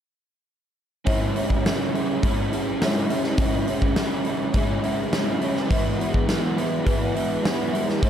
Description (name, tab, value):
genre	rock, shoegaze and dream pop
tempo	104 BPM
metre	4/4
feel	straight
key	unclear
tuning	A4 = 437 Hz
part	crunchy overdriven guitar	riff	1.1-8.1 s	A2 to E4	-23 LUFS	equal	ensemble chorus
part	huge arena drum kit	drums	1.1-8.1 s	hi-hat, kick drum, snare drum	-24 LUFS	equal	none
room	light reverb, small room ambience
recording	dark, warm production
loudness	-21 LUFS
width	side -9 dB against mid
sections	1.1-8.1 A section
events	none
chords	1.1 C#m; 5.7 E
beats	| 1.06 1.64 2.22 2.80 | 3.38 3.96 4.54 5.12 | 5.70 6.28 6.86 7.44 | 8.02